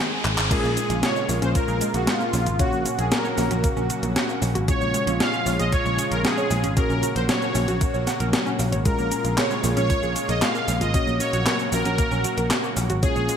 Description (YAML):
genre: synthwave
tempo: 115 BPM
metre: 4/4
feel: straight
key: unclear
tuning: A4 = 440 Hz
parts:
  - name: lush unison pad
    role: sustained chords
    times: 0.0-13.4 s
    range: Db3 to Ab4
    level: -30 LUFS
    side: right 1 dB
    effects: chorus, sidechain pumping
  - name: riser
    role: sound effects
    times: 0.0-0.5 s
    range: none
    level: -31 LUFS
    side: equal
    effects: none
  - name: picked electric bass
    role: bass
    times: 0.2-13.3 s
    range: Ab1 to Bb1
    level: -25 LUFS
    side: equal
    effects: none
  - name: clean 12-bit digital drum machine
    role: drums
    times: 0.2-13.4 s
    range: cabasa, crash cymbal, handclaps, hi-hat, snare drum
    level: -26 LUFS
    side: equal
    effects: overdrive, gated reverb
  - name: soft supersaw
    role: melody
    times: 0.5-13.4 s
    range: F4 to F5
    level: -26 LUFS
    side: right 1 dB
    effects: phaser, digital delay
  - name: analog pluck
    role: arpeggios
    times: 0.5-13.4 s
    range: Ab3 to Gb5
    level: -31 LUFS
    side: right 3 dB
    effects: chorus, vintage 12-bit sampler grit, digital delay
  - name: mellow FM electric piano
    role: stabs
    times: 0.5-13.4 s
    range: Bb2 to Db5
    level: -30 LUFS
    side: left 4 dB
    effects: chorus, cassette tape
  - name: electronic kick drum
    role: drums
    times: 0.5-13.1 s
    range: none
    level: -23 LUFS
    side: equal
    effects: overdrive
room: moderate plate reverb, RT60 1.9 s, digital ambience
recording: bright 1980s-style digital production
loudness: -20 LUFS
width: side -8 dB against mid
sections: 0.5-13.4 A section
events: riser 0.0-0.5; drum fill 0.2; band accent 0.4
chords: 0.0 Ab; 0.5 Bbm7; 2.6 Gb/Bb; 4.7 Db/Bb; 6.8 Gb/Bb; 8.9 Bbm7; 10.9 Gb/Bb